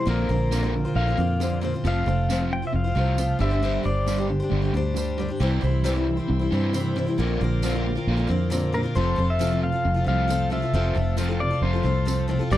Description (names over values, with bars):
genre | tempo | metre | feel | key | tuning
folk rock and heartland rock | 135 BPM | 4/4 | straight | unclear | A4 = 440 Hz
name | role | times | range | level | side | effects
pedal steel guitar | melody | 0.0-4.3, 8.7-12.6 s | Bb4 to G5 | -28 LUFS | left 2 dB | none
picked steel-string acoustic guitar | accompaniment | 0.0-12.6 s | Bb2 to C5 | -29 LUFS | left 3 dB | none
crunchy overdriven guitar | riff | 0.0-12.6 s | F2 to Bb3 | -28 LUFS | right 1 dB | harmonic tremolo
fingered electric bass | bass | 0.1-12.6 s | F1 to G2 | -24 LUFS | equal | none
tambourine | percussion | 0.5-12.6 s | none | -38 LUFS | right 9 dB | none
bright tonewheel organ | sustained chords | 5.4-12.6 s | F3 to D5 | -38 LUFS | right 1 dB | slow rotary speaker, overdrive
warm concert grand piano | accompaniment | 12.5-12.6 s | G4 to D5 | -30 LUFS | right 6 dB | none
room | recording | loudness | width
little or no reverb | dry, close 1970s-style studio recording | -21 LUFS | side -13 dB against mid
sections
0.0-12.5 A section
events
none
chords
0.1 Bbadd9; 1.8 F; 3.4 Gsus4; 5.4 C; 7.2 Bbadd9; 9.0 F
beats
| 0.07 0.51 0.96 1.40 | 1.85 2.29 2.74 3.18 | 3.63 4.07 4.51 4.96 | 5.41 5.85 6.29 6.74 | 7.18 7.63 8.07 8.52 | 8.96 9.41 9.85 10.30 | 10.74 11.19 11.63 12.08 | 12.52